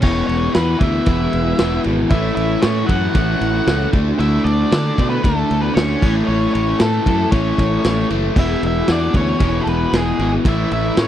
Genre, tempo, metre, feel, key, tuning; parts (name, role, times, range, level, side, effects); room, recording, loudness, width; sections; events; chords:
classic rock; 115 BPM; 4/4; straight; A major; A4 = 440 Hz
octave-fuzz lead guitar; melody; 0.0-11.1 s; G#4 to F#5; -24 LUFS; left 1 dB; distortion
octave-fuzz lead guitar; second line; 0.0-11.1 s; G#3 to F#4; -28 LUFS; right 5 dB; distortion
tonewheel organ; sustained chords; 0.0-11.1 s; G#3 to E5; -29 LUFS; equal
overdriven electric guitar; riff; 0.0-11.1 s; E2 to D4; -19 LUFS; left 2 dB
growling fingered electric bass; bass; 0.0-11.1 s; E1 to D3; -20 LUFS; equal; overdrive
vintage drum kit; drums; 0.0-11.1 s; crash cymbal, kick drum, ride cymbal, snare drum; -20 LUFS; equal
little or no reverb; dry, close 1970s-style studio recording; -14 LUFS; side -11 dB against mid
0.0-11.1 A section
0.0 E; 2.1 A; 3.9 Dadd9; 6.0 A; 8.4 E; 10.4 A